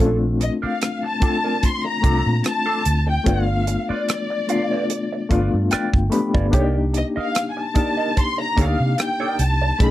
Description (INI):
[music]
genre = lush 1970s-style soul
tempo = 74 BPM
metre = 4/4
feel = swing 54% on 16ths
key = Bb major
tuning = A4 = 441 Hz
[part]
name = reed electric piano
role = accompaniment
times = 0.0-9.9 s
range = A3 to B5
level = -23 LUFS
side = left 3 dB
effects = fast tremolo
[part]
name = electric guitar through a small old amp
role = riff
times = 0.0-9.9 s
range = A3 to F5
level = -28 LUFS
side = right 5 dB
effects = wah
[part]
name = vintage muted fingered electric bass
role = bass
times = 0.0-9.9 s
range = G1 to C3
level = -20 LUFS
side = right 1 dB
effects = none
[part]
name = tight funk drum kit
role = drums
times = 0.0-9.9 s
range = hi-hat, kick drum, rim click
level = -20 LUFS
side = right 1 dB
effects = none
[part]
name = dark symphonic violin section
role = melody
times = 0.4-9.9 s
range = D5 to C6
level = -24 LUFS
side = left 2 dB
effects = none
[sound]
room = little or no reverb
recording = dry, close 1970s-style studio recording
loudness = -18 LUFS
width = side -14 dB against mid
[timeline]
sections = 0.0-9.9 A section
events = reed electric piano fill 4.9-6.5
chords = 0.0 Bbmaj9; 3.3 G7; 6.5 Cm9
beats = | 0.00 0.81 1.63 2.45 | 3.26 4.08 4.89 5.71 | 6.53 7.35 8.16 8.98 | 9.80